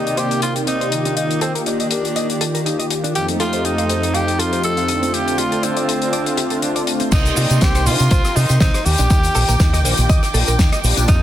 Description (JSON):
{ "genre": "nu-disco, nu disco", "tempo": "121 BPM", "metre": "4/4", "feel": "swing 55% on 16ths", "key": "unclear", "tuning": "A4 = 440 Hz", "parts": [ { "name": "raspy tenor saxophone", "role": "melody", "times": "0.0-11.2 s", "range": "C4 to A4", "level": "-22 LUFS", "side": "equal", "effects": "tape echo" }, { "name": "warm analog pad", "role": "accompaniment", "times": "0.0-11.2 s", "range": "F2 to D5", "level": "-22 LUFS", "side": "equal", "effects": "chorus, sidechain pumping" }, { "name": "dark studio string section", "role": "sustained chords", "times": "0.0-11.2 s", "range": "C3 to D6", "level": "-27 LUFS", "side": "equal", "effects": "sidechain pumping" }, { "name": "direct-recorded clean electric guitar", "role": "riff", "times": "0.0-11.2 s", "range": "C4 to F5", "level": "-27 LUFS", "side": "right 1 dB", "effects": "wide subtle chorus, low-pass filter, tape echo" }, { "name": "damped 70s drum kit", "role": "drums", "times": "0.1-11.2 s", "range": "crash cymbal, hi-hat, rim click, shaker, snare drum", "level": "-23 LUFS", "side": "left 3 dB", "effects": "small room reverb" }, { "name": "fingered electric bass with an envelope filter", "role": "bass", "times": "7.1-11.2 s", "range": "Bb1 to C3", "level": "-17 LUFS", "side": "equal", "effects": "tube saturation" }, { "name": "electronic kick drum", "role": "drums", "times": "7.1-11.2 s", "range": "none", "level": "-15 LUFS", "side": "equal", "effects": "overdrive, small room reverb" }, { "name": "tambourine", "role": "percussion", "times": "7.1-11.2 s", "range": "none", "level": "-30 LUFS", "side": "left 6 dB", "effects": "none" } ], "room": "light reverb, small room ambience", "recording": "dense, heavily limited modern master", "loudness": "-15 LUFS", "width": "side -12 dB against mid", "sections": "0.0-7.1 A section; 7.1-11.2 B section", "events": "drop 7.1-11.2", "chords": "0.0 Cm7; 0.9 Ebmaj7; 3.2 F7; 4.9 Dm7; 7.1 Cm7; 8.9 Ebmaj7" }